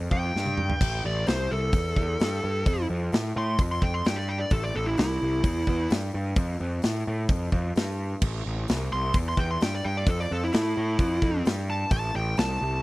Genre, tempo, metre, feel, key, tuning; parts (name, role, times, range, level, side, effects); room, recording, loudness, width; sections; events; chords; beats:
blues rock power trio and southern rock; 130 BPM; 4/4; straight; A minor; A4 = 439 Hz
fuzz picked electric bass; bass; 0.0-12.8 s; A1 to A2; -28 LUFS; equal; overdrive
fuzz lead guitar; melody; 0.1-5.9, 8.9-12.8 s; E4 to C6; -28 LUFS; equal; distortion
big rock drum kit; drums; 0.1-12.5 s; crash cymbal, hi-hat, kick drum, snare drum, toms; -28 LUFS; equal
little or no reverb; dry, close 1970s-style studio recording; -24 LUFS; side -19 dB against mid
0.0-12.8 A section
lead electric guitar solo 0.0-12.8; drum fill 0.4-0.8
0.0 Am
0.35 | 0.81 1.28 1.74 2.20 | 2.67 3.13 3.59 4.05 | 4.52 4.98 5.44 5.91 | 6.37 6.83 7.29 7.76 | 8.22 8.68 9.14 9.61 | 10.07 10.53 10.99 11.46 | 11.92 12.38